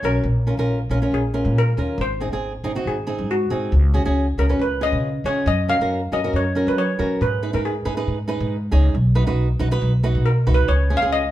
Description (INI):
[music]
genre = calypso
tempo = 138 BPM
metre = 4/4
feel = straight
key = unclear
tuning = A4 = 440 Hz
[part]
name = steel pan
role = melody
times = 0.0-11.3 s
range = F#4 to E#5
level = -23 LUFS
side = left 1 dB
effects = none
[part]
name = flamenco guitar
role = accompaniment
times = 0.0-11.2 s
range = B#3 to C#5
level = -24 LUFS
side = right 1 dB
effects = none
[part]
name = upright bass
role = bass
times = 0.0-11.3 s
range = G#1 to F#3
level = -20 LUFS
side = equal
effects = none
[sound]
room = moderate studio reverb, RT60 0.8 s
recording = band playing live in one room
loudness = -18 LUFS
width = side -14 dB against mid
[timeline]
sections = 0.0-11.3 A section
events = steel pan solo 0.0-11.3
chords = 0.2 A#m; 2.0 G#7; 3.7 C#sus4; 4.6 C#; 5.5 F#maj7; 7.2 G#m; 9.0 B; 10.7 C#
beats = | 0.24 0.68 1.12 1.55 | 1.99 2.42 2.86 3.30 | 3.73 4.17 4.60 5.04 | 5.47 5.91 6.34 6.78 | 7.21 7.65 8.08 8.52 | 8.95 9.39 9.82 10.26 | 10.69 11.12